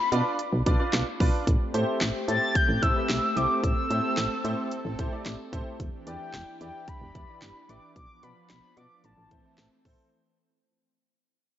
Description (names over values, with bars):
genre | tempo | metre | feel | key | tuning
synth-pop | 111 BPM | 4/4 | straight | A minor | A4 = 441 Hz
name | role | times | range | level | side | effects
mellow horn-like synth lead | melody | 0.0-9.9 s | G5 to A6 | -29 LUFS | left 2 dB | chorus, analog delay
clear grand piano | accompaniment | 0.1-10.1 s | C4 to D5 | -33 LUFS | right 1 dB | analog chorus
solid FM bass | bass | 0.1-10.0 s | E1 to B2 | -29 LUFS | equal | none
house drum kit | drums | 0.1-10.0 s | handclaps, hi-hat, kick drum, snare drum | -29 LUFS | equal | none
lush unison pad | sustained chords | 1.5-10.1 s | E3 to A4 | -35 LUFS | equal | chorus
room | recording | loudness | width
wet plate reverb, RT60 2.1 s | dreamy mix soaked in reverb, nothing above 7.7 kHz | -24 LUFS | side -12 dB against mid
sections
0.0-10.1 A section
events
fade-out 0.0-10.1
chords
0.0 Bdim; 1.5 Am7; 5.8 Em7; 8.0 Bdim; 9.0 Am